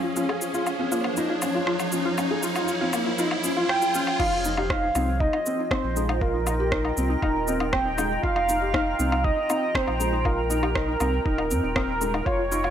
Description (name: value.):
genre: piano and strings electronica.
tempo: 119 BPM.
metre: 4/4.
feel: straight.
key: F minor.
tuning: A4 = 440 Hz.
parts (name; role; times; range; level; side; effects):
granular cloud pad; sustained chords; 0.0-12.7 s; F3 to Bb5; -31 LUFS; right 1 dB; built-in reverb, sidechain pumping.
warbly dusty pluck; arpeggios; 0.0-12.6 s; Eb4 to F4; -32 LUFS; left 2 dB; chorus, sidechain pumping, digital delay.
felt-muted upright piano; riff; 0.0-12.7 s; Ab3 to Ab4; -29 LUFS; left 2 dB; digital delay.
riser; sound effects; 0.0-4.2 s; none; -30 LUFS; right 1 dB; none.
deep house drum kit; drums; 0.2-12.7 s; crash cymbal, rim click, shaker, woodblock; -31 LUFS; equal; overdrive, high-pass filter on snare, high-pass filter on perc, high-pass filter on cymbals.
warm velvety synth lead; melody; 3.7-12.7 s; Bb4 to G5; -26 LUFS; right 2 dB; chorus.
warm sub bass; bass; 4.2-12.7 s; Eb1 to F2; -29 LUFS; equal; sidechain pumping.
electronic kick drum; drums; 4.2-12.4 s; none; -28 LUFS; equal; none.
room: moderate echo chamber reverb, RT60 2.6 s.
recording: none.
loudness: -22 LUFS.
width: side -9 dB against mid.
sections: 0.0-4.2 A section; 4.2-12.7 B section.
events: build-up 0.0-4.2; riser 0.0-4.2; drop 4.2-12.7.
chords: 0.0 Db/F; 4.2 Fm11.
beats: | 0.16 0.67 1.17 1.68 | 2.18 2.69 3.19 3.69 | 4.20 4.70 5.21 5.71 | 6.21 6.72 7.22 7.73 | 8.23 8.74 9.24 9.74 | 10.25 10.75 11.26 11.76 | 12.27.